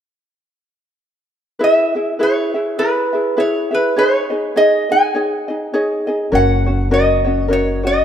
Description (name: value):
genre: Hawaiian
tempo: 102 BPM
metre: 4/4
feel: swing 58% on 8ths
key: E major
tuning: A4 = 440 Hz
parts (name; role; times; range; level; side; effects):
- metal-body resonator slide guitar; melody; 1.6-8.0 s; B4 to G#5; -16 LUFS; right 1 dB; none
- ukulele; accompaniment; 1.6-8.0 s; C#4 to E5; -17 LUFS; left 1 dB; none
- upright bass; bass; 6.3-8.0 s; F#1; -18 LUFS; equal; none
room: moderate lush hall reverb, RT60 2.1 s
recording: rough home demo mix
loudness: -14 LUFS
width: side -9 dB against mid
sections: 1.6-8.0 A section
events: none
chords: 1.6 E; 4.0 C#sus2; 6.3 F#